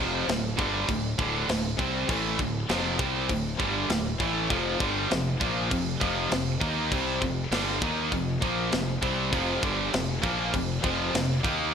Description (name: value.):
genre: heavy metal.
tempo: 100 BPM.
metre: 4/4.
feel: straight.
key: unclear.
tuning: A4 = 440 Hz.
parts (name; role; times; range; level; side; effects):
tight distorted guitar; riff; 0.0-11.7 s; D2 to Eb4; -30 LUFS; left 8 dB; distortion.
tight distorted guitar; riff; 0.0-11.7 s; D2 to Eb4; -29 LUFS; right 9 dB; distortion.
fuzz fingered electric bass; bass; 0.0-11.7 s; D1 to Eb2; -34 LUFS; left 1 dB; overdrive.
tight metal drum kit; drums; 0.3-11.6 s; crash cymbal, kick drum, snare drum; -31 LUFS; equal; none.
room: moderate lush hall reverb, RT60 1.7 s, small room ambience.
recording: bright 1980s-style digital production.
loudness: -24 LUFS.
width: side -7 dB against mid.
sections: 0.0-11.7 A section.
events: none.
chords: 0.0 Dm; 4.5 F5.